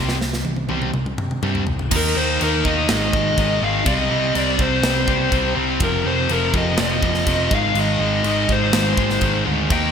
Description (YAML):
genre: hard rock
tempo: 123 BPM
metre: 4/4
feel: straight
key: unclear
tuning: A4 = 438 Hz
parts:
  - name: sludgy distorted guitar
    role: riff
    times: 0.0-9.9 s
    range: F2 to Eb4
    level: -24 LUFS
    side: left 11 dB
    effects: overdrive
  - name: sludgy distorted guitar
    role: riff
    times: 0.0-9.9 s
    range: F2 to Eb4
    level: -24 LUFS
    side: right 10 dB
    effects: overdrive
  - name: picked electric bass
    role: bass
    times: 0.0-9.9 s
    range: F1 to C3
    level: -25 LUFS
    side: equal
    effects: none
  - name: tight metal drum kit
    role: drums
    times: 0.1-9.8 s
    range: crash cymbal, kick drum, snare drum, toms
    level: -23 LUFS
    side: equal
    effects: gated reverb
  - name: heavy high-gain guitar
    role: riff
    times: 1.9-9.9 s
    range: F2 to Eb4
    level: -27 LUFS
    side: equal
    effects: distortion
  - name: dark smooth lead guitar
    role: melody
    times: 2.0-9.9 s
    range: Bb4 to G5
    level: -22 LUFS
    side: left 2 dB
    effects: overdrive, digital delay
room: moderate lush hall reverb, RT60 1.9 s, small room ambience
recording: bright 1980s-style digital production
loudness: -17 LUFS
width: side -7 dB against mid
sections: 0.0-1.9 A section; 1.9-9.9 B section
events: drum fill 0.0-1.9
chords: 0.0 C5; 1.9 Eb5; 2.9 Ab5; 3.9 Cm; 5.8 F5; 7.5 Ab